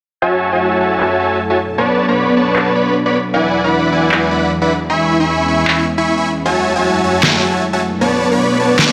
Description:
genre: future bass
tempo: 154 BPM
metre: 4/4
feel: swing 56% on 16ths, half-time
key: F# minor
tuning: A4 = 437 Hz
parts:
  - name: airy breathy pad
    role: sustained chords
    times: 0.2-8.9 s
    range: E2 to B4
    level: -22 LUFS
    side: equal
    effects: chorus
  - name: dense compressed supersaw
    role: riff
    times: 0.2-8.9 s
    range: B3 to C#6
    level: -16 LUFS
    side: equal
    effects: low-pass filter
  - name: electronic handclaps and snare drum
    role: drums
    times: 1.0-8.9 s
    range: none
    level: -18 LUFS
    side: equal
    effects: low-pass filter on snare, low-pass filter on room
room: moderate huge ambient reverb, RT60 8.0 s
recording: none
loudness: -15 LUFS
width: mono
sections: 0.2-8.9 A section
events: filter sweep on drum 0.2-8.9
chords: 0.2 F#m9; 1.6 Bm9; 3.3 E9; 4.9 C#m7/E; 6.5 F#m9; 7.8 Bm9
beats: | 0.22 0.61 1.00 1.39 | 1.78 2.17 2.56 2.95 | 3.34 3.73 4.12 4.50 | 4.89 5.29 5.67 6.06 | 6.45 6.84 7.23 7.62 | 8.01 8.40 8.79

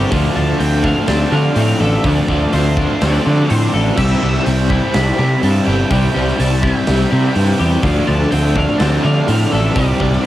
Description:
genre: rock, shoegaze and dream pop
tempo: 124 BPM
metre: 4/4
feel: straight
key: unclear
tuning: A4 = 439 Hz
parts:
  - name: twelve-string electric guitar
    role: arpeggios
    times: 0.0-10.3 s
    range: F3 to A4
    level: -23 LUFS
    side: left 5 dB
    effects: lush chorus, cassette tape, tape echo
  - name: biting overdriven guitar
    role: riff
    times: 0.0-10.3 s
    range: C3 to G4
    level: -25 LUFS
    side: right 7 dB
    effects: reverse reverb, cassette tape
  - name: crunchy overdriven guitar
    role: riff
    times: 0.0-10.3 s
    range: C3 to F4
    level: -26 LUFS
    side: left 6 dB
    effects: none
  - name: crunchy overdriven guitar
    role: riff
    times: 0.0-10.2 s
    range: C3 to D4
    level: -19 LUFS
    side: equal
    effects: tremolo, cassette tape
  - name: fuzz picked electric bass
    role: bass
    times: 0.0-10.2 s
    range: G1 to D3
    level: -16 LUFS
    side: equal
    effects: overdrive
  - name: big rock drum kit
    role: drums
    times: 0.1-10.2 s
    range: crash cymbal, hi-hat, kick drum, snare drum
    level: -23 LUFS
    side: equal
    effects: cassette tape
  - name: octave-fuzz lead guitar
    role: melody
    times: 0.4-10.3 s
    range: C5 to B5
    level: -25 LUFS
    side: right 1 dB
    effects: distortion, cassette tape, tape echo
room: small room ambience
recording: home recording on cassette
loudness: -12 LUFS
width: side -14 dB against mid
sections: 0.0-10.3 A section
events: none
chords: 0.1 Dm7; 4.0 C; 7.8 Dm7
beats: | 0.12 0.60 1.08 1.57 | 2.05 2.53 3.01 3.50 | 3.98 4.46 4.94 5.43 | 5.91 6.39 6.87 7.36 | 7.84 8.32 8.80 9.28 | 9.77 10.25

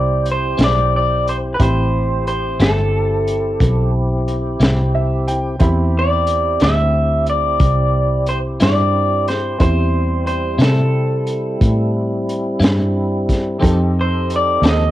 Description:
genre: slow blues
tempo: 60 BPM (dotted quarters)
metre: 12/8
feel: straight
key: A minor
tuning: A4 = 440 Hz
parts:
  - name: electric guitar through a small old amp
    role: melody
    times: 0.0-14.9 s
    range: A4 to E5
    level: -19 LUFS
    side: equal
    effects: cassette tape
  - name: clear upright piano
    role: accompaniment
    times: 0.0-14.9 s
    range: C4 to B5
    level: -25 LUFS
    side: right 2 dB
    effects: cassette tape
  - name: tonewheel organ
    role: sustained chords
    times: 0.0-14.9 s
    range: G3 to C5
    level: -24 LUFS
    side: equal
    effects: slow rotary speaker, overdrive, chorus vibrato, cassette tape
  - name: vintage muted fingered electric bass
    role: bass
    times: 0.0-14.9 s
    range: G1 to C3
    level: -18 LUFS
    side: equal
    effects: none
  - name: crunchy breakbeat drum kit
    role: drums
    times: 0.3-14.8 s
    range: hi-hat, kick drum, snare drum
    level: -17 LUFS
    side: equal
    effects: none
  - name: clean electric guitar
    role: accompaniment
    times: 0.6-14.8 s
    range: A2 to A4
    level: -23 LUFS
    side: left 2 dB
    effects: tremolo, cassette tape
room: little or no reverb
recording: home recording on cassette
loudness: -14 LUFS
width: side -14 dB against mid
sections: 0.0-14.9 A section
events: upright piano fill 4.6-5.6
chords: 0.0 Am7; 13.6 F7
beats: 0.59 | 1.59 2.60 3.60 4.60 | 5.60 6.60 7.60 8.61 | 9.61 10.61 11.61 12.61 | 13.61 14.62

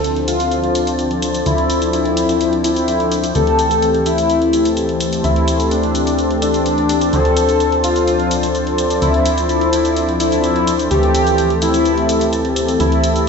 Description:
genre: progressive house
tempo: 127 BPM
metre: 4/4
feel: straight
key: D minor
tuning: A4 = 442 Hz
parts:
  - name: wide unison lead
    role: melody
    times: 0.0-13.2 s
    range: D4 to A4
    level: -17 LUFS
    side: left 2 dB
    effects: wide subtle chorus, tape echo
  - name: shimmering ambient pad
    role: sustained chords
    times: 0.0-13.3 s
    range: F3 to A5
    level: -25 LUFS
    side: equal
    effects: chorus, built-in reverb, vintage 12-bit sampler grit
  - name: soft supersaw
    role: stabs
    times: 0.0-13.3 s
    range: E3 to C5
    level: -18 LUFS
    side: left 2 dB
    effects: low-pass filter, tape echo
  - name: plucky analog bass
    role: bass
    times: 0.0-13.3 s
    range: D2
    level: -22 LUFS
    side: right 1 dB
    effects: none
  - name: electronic hi-hat and shaker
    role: drums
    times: 0.0-13.2 s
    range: none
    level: -26 LUFS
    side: equal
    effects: none
room: wet digital room reverb, RT60 1.2 s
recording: played on a big sound system in a bare room, stone room reverb, nothing above 8.0 kHz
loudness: -13 LUFS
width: side -5 dB against mid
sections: 0.0-13.3 A section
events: filter sweep on supersaw synth 0.0-13.3; filter sweep on ambient pad 0.0-13.3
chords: 0.0 Dm7; 3.4 C6/D; 7.1 Dm7; 10.9 C6/D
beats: 0.04 0.52 0.99 | 1.46 1.93 2.41 2.88 | 3.35 3.82 4.30 4.77 | 5.24 5.71 6.19 6.66 | 7.13 7.60 8.07 8.55 | 9.02 9.49 9.96 10.44 | 10.91 11.38 11.86 12.33 | 12.80 13.27

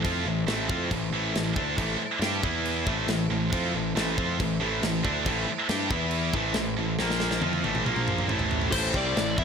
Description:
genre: heavy metal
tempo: 138 BPM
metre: 4/4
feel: straight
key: A phrygian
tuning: A4 = 438 Hz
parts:
  - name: pipe organ, principal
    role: sustained chords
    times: 0.0-9.4 s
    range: E3 to Bb5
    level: -37 LUFS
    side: left 2 dB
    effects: none
  - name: heavy high-gain guitar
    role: riff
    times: 0.0-9.4 s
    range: A2 to G4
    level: -29 LUFS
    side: right 10 dB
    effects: distortion
  - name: scooped high-gain guitar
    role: riff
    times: 0.0-9.4 s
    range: A2 to G4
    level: -31 LUFS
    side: left 16 dB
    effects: distortion
  - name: fuzz picked electric bass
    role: bass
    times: 0.0-9.4 s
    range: A1 to G2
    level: -31 LUFS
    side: equal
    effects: overdrive
  - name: tight metal drum kit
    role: drums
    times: 0.0-9.4 s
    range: china cymbal, crash cymbal, kick drum, snare drum, toms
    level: -31 LUFS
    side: equal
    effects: none
  - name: high-gain lead guitar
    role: melody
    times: 8.7-9.4 s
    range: C5 to E5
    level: -28 LUFS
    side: left 2 dB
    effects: distortion
room: light reverb, studio reverb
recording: none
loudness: -24 LUFS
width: side -6 dB against mid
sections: 0.0-8.7 A section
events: drum fill 7.0-8.7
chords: 0.0 Am; 2.4 E5; 2.9 Am; 5.9 E5; 6.3 Am; 7.0 Bb5; 7.4 Am; 7.9 Bb5; 8.3 Am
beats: | 0.05 0.48 0.92 1.35 | 1.78 2.22 2.65 3.08 | 3.52 3.95 4.39 4.82 | 5.25 5.69 6.12 6.56 | 6.99 7.43 7.86 8.30 | 8.73 9.16

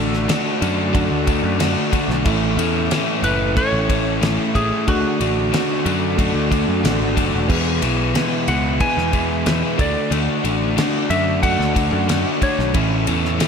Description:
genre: classic rock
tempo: 92 BPM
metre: 4/4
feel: straight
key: unclear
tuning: A4 = 440 Hz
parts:
  - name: clean lap steel guitar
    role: melody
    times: 0.0-12.7 s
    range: F#4 to G#5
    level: -24 LUFS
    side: equal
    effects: slapback echo
  - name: reed electric piano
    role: accompaniment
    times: 0.0-13.5 s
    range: A3 to B4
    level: -29 LUFS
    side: right 4 dB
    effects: slapback echo
  - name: tonewheel organ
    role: sustained chords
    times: 0.0-13.5 s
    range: C#3 to B4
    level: -33 LUFS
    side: equal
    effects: none
  - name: overdriven electric guitar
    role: riff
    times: 0.0-13.5 s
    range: E2 to D4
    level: -22 LUFS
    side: left 11 dB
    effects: none
  - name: overdriven electric guitar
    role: riff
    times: 0.0-13.5 s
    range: A2 to F#4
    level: -24 LUFS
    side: right 11 dB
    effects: spring reverb
  - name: picked electric bass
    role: bass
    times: 0.0-13.4 s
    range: E1 to F#2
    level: -22 LUFS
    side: equal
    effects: none
  - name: damped 70s drum kit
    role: drums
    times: 0.1-13.5 s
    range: crash cymbal, kick drum, ride cymbal, snare drum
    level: -23 LUFS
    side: left 1 dB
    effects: none
room: moderate lush hall reverb, RT60 2.3 s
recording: big arena sound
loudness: -16 LUFS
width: side -6 dB against mid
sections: 0.0-13.5 A section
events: none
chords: 0.0 D; 2.3 A; 4.9 D; 7.5 E; 9.8 D; 12.7 A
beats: 0.29 0.94 1.60 | 2.25 2.91 3.56 4.22 | 4.87 5.53 6.18 6.84 | 7.49 8.15 8.80 9.46 | 10.12 10.78 11.43 12.09 | 12.75 13.41

